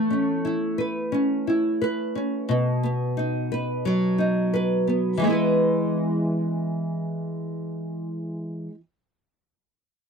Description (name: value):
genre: pop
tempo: 88 BPM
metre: 4/4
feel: straight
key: E major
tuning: A4 = 441 Hz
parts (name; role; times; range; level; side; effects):
- nylon-string guitar; accompaniment; 0.0-8.8 s; B2 to B4; -22 LUFS; equal; double-tracked left and right
room: light reverb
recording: dry, close 1970s-style studio recording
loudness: -22 LUFS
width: side -6 dB against mid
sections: 0.0-5.2 A section; 5.2-7.9 B section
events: none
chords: 0.0 Aadd9; 2.5 B; 5.2 E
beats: 0.44 1.12 1.80 | 2.49 3.17 3.85 4.53 | 5.22 5.90 6.58 7.27